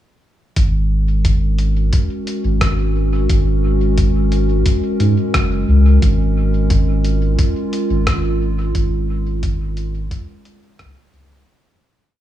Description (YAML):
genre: ambient dub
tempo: 88 BPM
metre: 4/4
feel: straight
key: unclear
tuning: A4 = 438 Hz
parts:
  - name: warbly tape-like pad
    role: sustained chords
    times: 1.1-11.5 s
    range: G#3 to A#4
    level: -22 LUFS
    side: right 1 dB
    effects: chorus, built-in reverb
  - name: warm sub bass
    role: bass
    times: 0.6-11.4 s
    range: F#1 to G#2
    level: -15 LUFS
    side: equal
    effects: none
  - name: electronic kick drum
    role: drums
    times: 0.6-10.9 s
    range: none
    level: -18 LUFS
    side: equal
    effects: small room ambience
  - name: lo-fi sampler-style drum kit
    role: drums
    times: 0.6-11.3 s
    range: hi-hat, rim click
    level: -25 LUFS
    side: left 1 dB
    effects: small room ambience, dub echo
room: digital ambience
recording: studio reverb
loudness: -14 LUFS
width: side -12 dB against mid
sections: 0.6-11.5 groove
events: fade-out 7.8-11.5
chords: 0.6 F#maj9